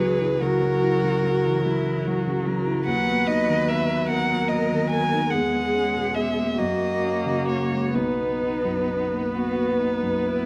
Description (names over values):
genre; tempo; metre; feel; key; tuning
classical, slow romantic movement for piano quartet; 42-50 BPM (dotted quarters); 12/8; rubato; B major; A4 = 439 Hz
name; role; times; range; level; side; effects
rich violin; melody; 0.0-10.5 s; A#4 to G#5; -28 LUFS; equal; none
rich cello; second line; 0.0-10.5 s; D#4 to B4; -31 LUFS; equal; none
clear viola; accompaniment; 0.0-10.5 s; F#3 to B3; -31 LUFS; equal; none
dark baby grand piano; accompaniment; 0.0-10.5 s; B1 to E4; -28 LUFS; equal; none
room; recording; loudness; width
moderate concert hall reverb, RT60 2.1 s; close, detailed microphones; -23 LUFS; mono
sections
0.0-10.5 A section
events
none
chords
0.0 F#7/C#; 2.9 B/D#; 5.3 C#m7/E; 6.6 F#; 7.9 B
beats
0.41 1.65 | 2.87 4.09 5.31 6.58 | 7.94 9.33